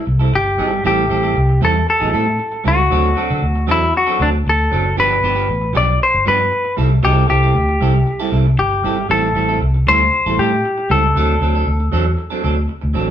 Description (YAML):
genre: disco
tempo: 116 BPM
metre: 4/4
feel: straight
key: A minor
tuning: A4 = 440 Hz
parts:
  - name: semi-hollow electric guitar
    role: melody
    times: 0.0-12.7 s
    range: D4 to D5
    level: -16 LUFS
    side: left 2 dB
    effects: none
  - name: semi-hollow electric guitar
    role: accompaniment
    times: 0.1-13.1 s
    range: F3 to A4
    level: -22 LUFS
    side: right 5 dB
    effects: none
  - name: vintage muted fingered electric bass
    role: bass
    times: 0.1-13.1 s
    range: F#1 to D3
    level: -17 LUFS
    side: equal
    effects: none
room: wet studio reverb, RT60 0.9 s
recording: band playing live in one room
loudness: -13 LUFS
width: side -10 dB against mid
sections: 0.0-13.1 A section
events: none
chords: 0.0 C6; 0.8 Am7; 2.9 D7; 5.0 G7; 6.8 C6; 9.1 Am7; 11.2 D7